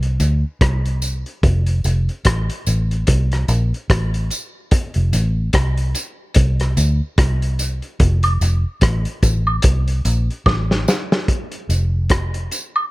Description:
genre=roots reggae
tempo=73 BPM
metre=4/4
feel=swing 58% on 16ths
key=F major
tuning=A4 = 439 Hz
part: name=vintage muted fingered electric bass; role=bass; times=0.0-12.5 s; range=F1 to D2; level=-17 LUFS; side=equal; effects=none
part: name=vintage drum kit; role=drums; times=0.0-12.7 s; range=hi-hat, kick drum, rim click, snare drum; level=-18 LUFS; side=equal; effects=none
part: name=tambourine and woodblock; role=percussion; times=0.2-12.9 s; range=none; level=-23 LUFS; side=right 1 dB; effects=none
room=little or no reverb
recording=none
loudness=-16 LUFS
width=side -19 dB against mid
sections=0.0-11.3 A section; 11.3-12.9 B section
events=drum fill 10.5-11.3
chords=none

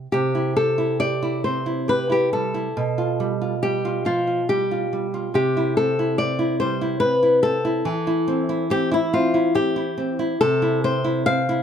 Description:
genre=romantic duo for nylon-string guitar and classical guitar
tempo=70 BPM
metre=3/4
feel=uneven beats, rubato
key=C major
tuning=A4 = 440 Hz
part: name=nylon-string guitar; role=accompaniment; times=0.0-11.6 s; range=B2 to G4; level=-23 LUFS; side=right 2 dB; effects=none
part: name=flamenco guitar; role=melody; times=0.1-11.6 s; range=E4 to F5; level=-21 LUFS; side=left 2 dB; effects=none
room=light reverb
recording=close, detailed microphones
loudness=-19 LUFS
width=side -8 dB against mid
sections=0.1-11.6 A section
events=none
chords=0.1 C; 2.7 G7/B; 5.4 C; 7.9 C/E; 10.4 Am/C

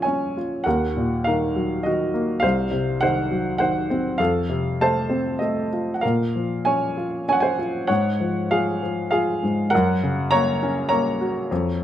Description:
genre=classical, lyrical solo piano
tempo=100 BPM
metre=3/4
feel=rubato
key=Bb minor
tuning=A4 = 440 Hz
part: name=warm baby grand piano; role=solo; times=0.0-11.8 s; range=C2 to Bb5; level=-20 LUFS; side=equal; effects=none
room=light reverb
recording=close, detailed microphones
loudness=-20 LUFS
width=side -11 dB against mid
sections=0.0-11.8 A section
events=none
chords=0.0 Bbm7; 0.7 Ebm; 2.4 Cdim; 4.2 F; 6.0 Bbm; 7.9 Db/Ab; 9.7 Gb

